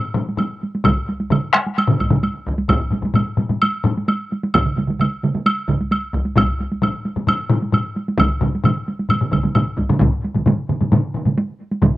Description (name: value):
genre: japanese traditional, taiko drum ensemble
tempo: 131 BPM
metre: 4/4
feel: straight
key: none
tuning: none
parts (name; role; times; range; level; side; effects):
- taiko ensemble; percussion; 0.1-11.9 s; none; -20 LUFS; left 3 dB; none
- solo taiko drums; percussion; 0.2-11.9 s; none; -22 LUFS; right 2 dB; none
- woodblock; percussion; 0.4-9.7 s; none; -22 LUFS; equal; none
- taiko ensemble; percussion; 0.8-11.9 s; none; -22 LUFS; equal; none
- taiko ensemble; percussion; 0.9-11.9 s; none; -21 LUFS; right 3 dB; none
room: little or no reverb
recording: recorded outdoors, with no room sound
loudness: -17 LUFS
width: side -16 dB against mid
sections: 0.0-10.0 A section; 10.0-12.0 B section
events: none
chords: none